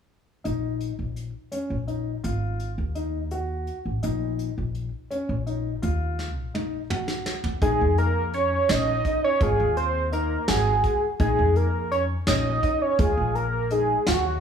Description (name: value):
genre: progressive instrumental, band music in an uneven meter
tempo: 168 BPM (eighths)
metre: 5/8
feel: straight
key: Bb minor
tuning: A4 = 441 Hz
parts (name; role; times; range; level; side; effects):
- dark concert grand piano; arpeggios; 0.4-14.4 s; Db4 to Gb4; -31 LUFS; left 3 dB; none
- soft brush drum kit; drums; 0.4-14.2 s; hi-hat, kick drum, snare drum, toms; -28 LUFS; equal; none
- upright bass; bass; 0.5-14.4 s; Ab1 to F2; -27 LUFS; equal; none
- octave-doubled lead; melody; 7.6-14.4 s; Gb4 to Eb5; -23 LUFS; right 2 dB; chorus
room: moderate large studio reverb, RT60 1.2 s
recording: band playing live in one room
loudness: -22 LUFS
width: side -7 dB against mid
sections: 0.5-7.6 A section; 7.6-14.4 B section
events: drum fill 6.2-7.6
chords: 0.5 Bbm; 2.2 Ab5; 4.0 Bbm; 5.8 Ebm; 7.6 Bbm; 9.4 Ab5; 11.2 Bbm; 13.0 Ebm